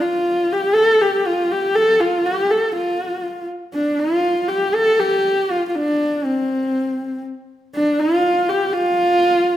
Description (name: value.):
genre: mongolian traditional.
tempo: 120 BPM.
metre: 4/4.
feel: straight.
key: unclear.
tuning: A4 = 440 Hz.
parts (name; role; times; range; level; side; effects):
dark horsehead fiddle; solo; 0.0-9.6 s; C4 to A4; -16 LUFS; equal; none.
room: wet recital hall reverb, RT60 1.4 s.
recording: none.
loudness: -16 LUFS.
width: side -12 dB against mid.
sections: 0.0-9.6 A section.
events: none.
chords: none.